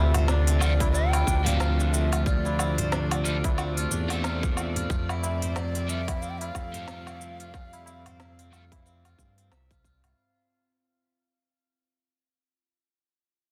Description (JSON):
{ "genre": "organic downtempo", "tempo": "91 BPM", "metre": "4/4", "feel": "swing 58% on 16ths", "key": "unclear", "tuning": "A4 = 437 Hz", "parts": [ { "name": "bright bass bansuri", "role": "melody", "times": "0.0-9.5 s", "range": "D5 to G5", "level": "-36 LUFS", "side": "equal", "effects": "tape echo" }, { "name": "warm studio string section", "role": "sustained chords", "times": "0.0-10.1 s", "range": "C3 to D5", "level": "-38 LUFS", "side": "equal", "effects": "sidechain pumping" }, { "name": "steel-string zither", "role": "arpeggios", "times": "0.0-12.6 s", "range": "C4 to F5", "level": "-39 LUFS", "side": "equal", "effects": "tape echo" }, { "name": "smooth gliding synth bass", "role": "bass", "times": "0.0-10.1 s", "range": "C2 to G2", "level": "-29 LUFS", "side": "equal", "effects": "none" }, { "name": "bronze singing bowl", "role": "texture", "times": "0.0-10.2 s", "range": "none", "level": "barely audible", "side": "none", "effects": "none" }, { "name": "organic electronic drum kit", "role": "drums", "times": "0.1-10.2 s", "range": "hi-hat, shaker, snare drum, woodblock", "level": "-35 LUFS", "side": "equal", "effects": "overdrive" }, { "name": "tabla", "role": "percussion", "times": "0.1-10.1 s", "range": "none", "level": "-40 LUFS", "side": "equal", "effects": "none" }, { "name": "electric guitar at the edge of break-up", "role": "accompaniment", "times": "0.6-8.6 s", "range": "F3 to F5", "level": "-38 LUFS", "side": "equal", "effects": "subtle chorus, sidechain pumping, tape echo" }, { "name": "electronic kick drum", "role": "drums", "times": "0.8-10.0 s", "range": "none", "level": "-30 LUFS", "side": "equal", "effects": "overdrive" } ], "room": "studio ambience", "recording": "dense, heavily limited modern master", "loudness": "-26 LUFS", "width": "mono", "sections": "0.0-10.2 A section", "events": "fade-out 0.0-10.2", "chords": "0.0 Dm7; 4.9 Fmaj7", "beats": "0.28 0.94 1.60 | 2.26 2.92 3.58 4.24 | 4.90 5.56 6.22 6.88 | 7.54 8.20 8.85 9.51" }